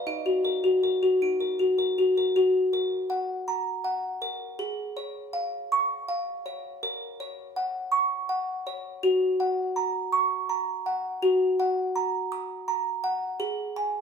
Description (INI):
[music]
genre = classical, lullaby for music box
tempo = 54 BPM (dotted quarters)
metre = 6/8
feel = straight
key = F# major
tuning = A4 = 441 Hz
[part]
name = music box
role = solo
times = 0.0-14.0 s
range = Eb4 to Eb6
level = -25 LUFS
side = equal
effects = none
[sound]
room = wet stone room reverb, RT60 1.0 s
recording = band playing live in one room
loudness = -24 LUFS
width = side -6 dB against mid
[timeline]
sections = 0.0-2.4 A section; 2.4-14.0 B section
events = none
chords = 0.1 Ebm; 2.4 F#; 4.6 C#/G#; 6.8 F#/A#; 9.0 F#; 11.2 Ebm/Gb; 13.4 N.C.